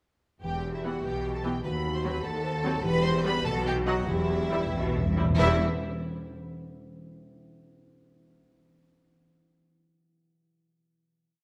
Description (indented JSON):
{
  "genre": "classical, dramatic, fast romantic movement for symphony orchestra",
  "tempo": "90-101 BPM (dotted quarters)",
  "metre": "6/8",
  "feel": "straight",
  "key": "E minor",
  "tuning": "A4 = 440 Hz",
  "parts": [
    { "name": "rich symphonic violin section", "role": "melody", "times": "0.4-5.6 s", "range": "E5 to B#5", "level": "-38 LUFS", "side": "equal", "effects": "none" },
    { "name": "clear symphonic violin section", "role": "second line", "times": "0.4-5.6 s", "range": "E4 to B#4", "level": "-37 LUFS", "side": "equal", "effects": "none" },
    { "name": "mellow French horn section", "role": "sustained chords", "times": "0.4-5.6 s", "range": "G3 to B#4", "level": "-36 LUFS", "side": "equal", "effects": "none" },
    { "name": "concert harp", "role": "arpeggios", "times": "0.4-6.7 s", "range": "B2 to B5", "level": "-37 LUFS", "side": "equal", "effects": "none" },
    { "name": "rich symphonic cello section", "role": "bass", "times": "0.4-5.6 s", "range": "D#2 to B2", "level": "-37 LUFS", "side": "equal", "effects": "none" },
    { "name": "rich symphonic double bass section", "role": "bass", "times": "0.4-5.6 s", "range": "E1 to D#2", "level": "-36 LUFS", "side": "equal", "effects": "none" },
    { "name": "rich symphonic viola section", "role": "accompaniment", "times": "0.8-5.6 s", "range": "E3 to E4", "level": "-35 LUFS", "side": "equal", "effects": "none" },
    { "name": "timpani", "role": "percussion", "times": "2.8-5.6 s", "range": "E2", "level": "-34 LUFS", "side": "equal", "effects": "none" }
  ],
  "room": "moderate scoring stage reverb, RT60 1.8 s",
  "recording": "none",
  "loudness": "-28 LUFS",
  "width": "mono",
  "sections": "0.4-5.4 A section; 5.4-6.7 final chord",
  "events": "slowing down 2.2-5.4; timpani fill 4.1-5.4",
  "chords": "0.4 Em; 1.6 D#dim7; 2.8 Em; 3.5 B; 4.1 Em",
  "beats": "| 0.43 1.04 | 1.65 2.25 | 2.84 3.46 | 4.09 4.74 | 5.39 6.03"
}